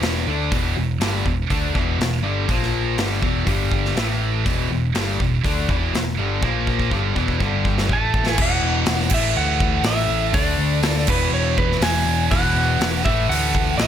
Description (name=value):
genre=hard rock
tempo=122 BPM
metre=4/4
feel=straight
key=unclear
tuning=A4 = 440 Hz
part: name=overdriven semi-hollow guitar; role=riff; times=0.0-13.9 s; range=E2 to D4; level=-26 LUFS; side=left 9 dB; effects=none
part: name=scooped high-gain guitar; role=riff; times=0.0-13.9 s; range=E2 to D4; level=-24 LUFS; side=right 12 dB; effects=distortion
part: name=overdriven picked electric bass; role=bass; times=0.0-13.9 s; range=E1 to D2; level=-23 LUFS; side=equal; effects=none
part: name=big rock drum kit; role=drums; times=0.0-13.9 s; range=crash cymbal, hi-hat, kick drum, snare drum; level=-23 LUFS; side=equal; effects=none
part: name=lightly driven lead guitar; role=melody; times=7.9-13.9 s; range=B4 to A5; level=-23 LUFS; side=right 1 dB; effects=tape echo
room=little or no reverb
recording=none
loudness=-18 LUFS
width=side -10 dB against mid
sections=0.0-8.4 A section; 8.4-13.9 B section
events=drum fill 6.4-8.4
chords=0.0 E5; 2.5 A#5; 3.0 E5; 3.5 G5; 4.0 A5; 4.5 E5; 6.4 A#5; 6.9 E5; 7.4 G5; 7.9 A5; 8.4 E5; 9.1 A5; 10.4 D5; 11.1 E5; 13.1 A5